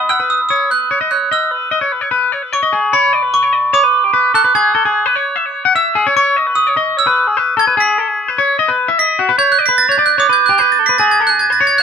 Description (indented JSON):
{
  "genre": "rock",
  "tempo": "149 BPM",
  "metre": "4/4",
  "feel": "straight",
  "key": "unclear",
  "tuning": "A4 = 445 Hz",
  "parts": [
    { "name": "glockenspiel with hard plastic mallets", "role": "melody", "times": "0.0-11.8 s", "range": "B5 to B6", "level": "-13 LUFS", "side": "right 3 dB", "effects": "none" },
    { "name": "twangy electric guitar", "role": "arpeggios", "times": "0.0-11.8 s", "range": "F#4 to F#5", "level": "-14 LUFS", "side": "left 4 dB", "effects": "none" }
  ],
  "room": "moderate studio ambience, RT60 0.5 s",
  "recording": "band playing live in one room",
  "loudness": "-11 LUFS",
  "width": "side -6 dB against mid",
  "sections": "0.0-2.9 A section; 2.9-11.8 B section",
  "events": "none",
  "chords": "0.0 G#m7 (rootless); 1.3 Emaj7; 2.9 G (rootless); 4.5 Amaj7 (rootless); 6.2 C#m9; 7.8 B; 9.4 G; 11.0 Amaj7"
}